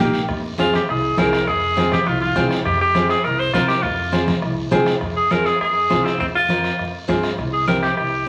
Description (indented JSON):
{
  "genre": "latin, cumbia",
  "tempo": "203 BPM",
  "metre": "4/4",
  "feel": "straight",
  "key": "F minor, F harmonic minor from 5.0 s",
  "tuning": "A4 = 442 Hz",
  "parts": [
    { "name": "nylon-string guitar", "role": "accompaniment", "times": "0.0-8.3 s", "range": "Bb3 to Bb4", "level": "-24 LUFS", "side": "equal", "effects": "none" },
    { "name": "upright bass", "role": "bass", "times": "0.0-8.2 s", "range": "Bb1 to G2", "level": "-30 LUFS", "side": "equal", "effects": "none" },
    { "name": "guiro", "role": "percussion", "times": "0.1-8.3 s", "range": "none", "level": "-35 LUFS", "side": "equal", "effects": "none" },
    { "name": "bombo", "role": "percussion", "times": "0.3-8.1 s", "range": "none", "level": "-32 LUFS", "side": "equal", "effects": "none" },
    { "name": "bright alto saxophone", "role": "melody", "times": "0.6-8.3 s", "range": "C4 to C5", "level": "-22 LUFS", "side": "equal", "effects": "none" },
    { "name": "congas", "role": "percussion", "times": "0.6-7.8 s", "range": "none", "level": "-28 LUFS", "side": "equal", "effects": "none" }
  ],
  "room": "wet large studio reverb, RT60 1.2 s",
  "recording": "vinyl crackle",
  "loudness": "-19 LUFS",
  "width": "mono",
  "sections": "0.0-5.0 A section; 5.0-8.3 B section",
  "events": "none",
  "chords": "0.3 Fm; 7.4 C"
}